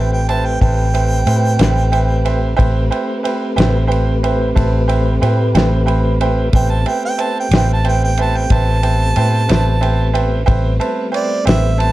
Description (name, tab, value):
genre	slow blues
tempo	61 BPM (dotted quarters)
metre	12/8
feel	straight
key	A minor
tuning	A4 = 440 Hz
part	clear harmonica	second line	0.0-11.9 s	D5 to A5	-21 LUFS	right 3 dB	overdrive
part	bright upright piano	accompaniment	0.0-11.9 s	B4 to B5	-21 LUFS	right 4 dB	none
part	tonewheel organ	sustained chords	0.0-11.9 s	G3 to B4	-22 LUFS	left 1 dB	slow rotary speaker, overdrive
part	vintage muted fingered electric bass	bass	0.0-11.9 s	A1 to A2	-15 LUFS	equal	none
part	warm soul drum kit	drums	0.3-11.9 s	kick drum, ride cymbal, snare drum	-20 LUFS	equal	none
room	light reverb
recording	dark, warm production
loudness	-13 LUFS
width	side -16 dB against mid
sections	0.0-11.9 A section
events	harmonica solo 0.0-11.9; upright piano fill 5.5-6.5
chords	0.0 Am9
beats	0.61 1.59 | 2.58 3.57 4.56 5.54 | 6.53 7.52 8.50 9.49 | 10.47 11.46